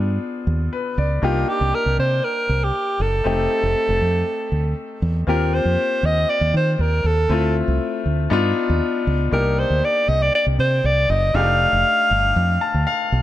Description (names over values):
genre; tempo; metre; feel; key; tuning
polished 1980s jazz-funk pop; 119 BPM; 4/4; straight; unclear; A4 = 443 Hz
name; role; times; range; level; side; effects
bright concert grand piano; accompaniment; 0.0-13.2 s; Ab3 to A5; -24 LUFS; left 4 dB; wide subtle chorus
fingered electric bass; bass; 0.0-13.2 s; F1 to Eb3; -20 LUFS; right 1 dB; none
breathy alto saxophone; melody; 1.2-12.9 s; F4 to F5; -20 LUFS; equal; none
room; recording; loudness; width
light reverb, small room ambience; none; -17 LUFS; side -13 dB against mid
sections
0.0-5.3 A section; 5.3-13.2 B section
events
grand piano fill 12.4-13.2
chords
0.0 G7b9; 1.2 Cm9; 3.3 F7; 5.3 Eb69; 7.3 Dm7; 8.3 G7b13; 9.3 Cm9; 11.3 F13